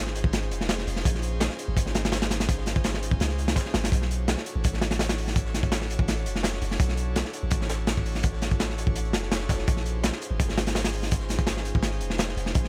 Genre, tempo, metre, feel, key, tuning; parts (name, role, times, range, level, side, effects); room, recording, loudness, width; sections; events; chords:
drum and bass, jungle; 167 BPM; 4/4; straight; A4 = 436 Hz
airy breathy pad; sustained chords; 0.0-12.7 s; Db4 to C#5; -38 LUFS; equal; chorus, vintage 12-bit sampler grit
long sustained 808-style bass; bass; 0.0-12.7 s; F1 to Db2; -32 LUFS; equal
crunchy breakbeat drum kit; drums; 0.1-12.7 s; hi-hat, kick drum, snare drum; -28 LUFS; equal
crunchy breakbeat drum kit; drums; 0.2-12.6 s; hi-hat, snare drum; -40 LUFS; equal
small room reverb; -27 LUFS; mono
0.0-12.7 A section
0.0 Bbm11 (rootless); 3.9 Bm11; 9.7 Bbm11